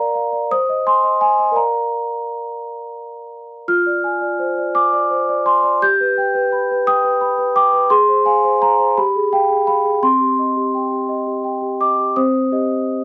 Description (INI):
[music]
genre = classical, lullaby for celesta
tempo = 56 BPM (dotted quarters)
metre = 6/8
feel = straight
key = C minor from 3.7 s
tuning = A4 = 441 Hz
[part]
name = large celesta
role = solo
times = 0.0-13.0 s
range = C4 to G6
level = -14 LUFS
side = equal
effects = none
[sound]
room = light reverb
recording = dry, close 1970s-style studio recording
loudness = -14 LUFS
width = side -24 dB against mid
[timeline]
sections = 0.0-12.2 A section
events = none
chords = 0.0 Bb; 0.5 Ab/C; 1.6 Bb; 3.7 Dm7b5/F; 5.8 G; 7.9 Fm/Ab; 9.0 G7b9; 10.0 Cm